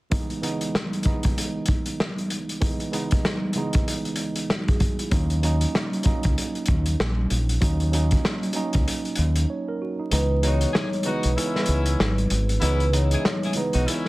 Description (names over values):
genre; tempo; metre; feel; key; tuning
hip hop, boom-bap hip-hop; 96 BPM; 4/4; swing 60% on 16ths; C# dorian; A4 = 440 Hz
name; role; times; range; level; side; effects
tine electric piano; accompaniment; 0.1-14.1 s; C#2 to C#5; -28 LUFS; right 3 dB; high-pass filter, low-pass filter
vintage drum kit; drums; 0.1-14.1 s; hi-hat, kick drum, rim click, snare drum; -24 LUFS; equal; none
deep dub fingered electric bass; bass; 5.1-13.9 s; G#1 to D#2; -22 LUFS; equal; none
vibraphone with soft mallets; melody; 10.1-13.8 s; B4 to C#5; -28 LUFS; equal; high-pass filter, low-pass filter, digital delay
warm horn section; stabs; 10.4-14.1 s; B3 to G#4; -30 LUFS; left 3 dB; high-pass filter, low-pass filter, digital delay
room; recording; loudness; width
little or no reverb; dense, heavily limited modern master, vinyl crackle; -21 LUFS; side -19 dB against mid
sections
0.1-10.1 A section; 10.1-14.1 B section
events
break 9.5-10.1; kick muted 10.1-14.1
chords
0.1 C#m7; 5.1 D#m7; 10.1 C#m7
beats
| 0.12 0.74 1.37 1.99 | 2.62 3.24 3.87 4.49 | 5.12 5.74 6.37 6.99 | 7.62 8.24 8.87 9.49 | 10.12 10.74 11.37 11.99 | 12.62 13.24 13.87